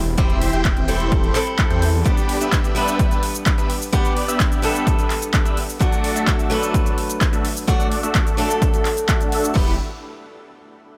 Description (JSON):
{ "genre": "EDM, festival progressive house", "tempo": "128 BPM", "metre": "4/4", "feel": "straight", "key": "unclear", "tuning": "A4 = 440 Hz", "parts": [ { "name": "picked old ladder-braced acoustic guitar", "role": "accompaniment", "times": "0.0-9.7 s", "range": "F#3 to C5", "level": "-27 LUFS", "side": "equal", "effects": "sidechain pumping, tape echo" }, { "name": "detuned saw bass", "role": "bass", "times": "0.0-2.0, 9.6-9.8 s", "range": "E1 to E2", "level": "-24 LUFS", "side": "equal", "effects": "sidechain pumping" }, { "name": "big supersaw lead", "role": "riff", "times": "0.2-9.7 s", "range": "A3 to G5", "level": "-27 LUFS", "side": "equal", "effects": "phaser, sidechain pumping, low-pass filter, tape echo" }, { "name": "big-room dance drum kit", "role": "drums", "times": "0.2-9.7 s", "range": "crash cymbal, handclaps, hi-hat, shaker", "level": "-29 LUFS", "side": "equal", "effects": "overdrive" }, { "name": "electronic kick drum", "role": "drums", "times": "0.2-9.7 s", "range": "none", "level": "-22 LUFS", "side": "equal", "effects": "overdrive" } ], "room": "little or no reverb", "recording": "none", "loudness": "-19 LUFS", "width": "mono", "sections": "0.0-9.6 A section; 9.6-11.0 B section", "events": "filter sweep on supersaw synth 0.0-9.6", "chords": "0.0 C/E; 2.1 G; 5.8 D; 9.6 Em" }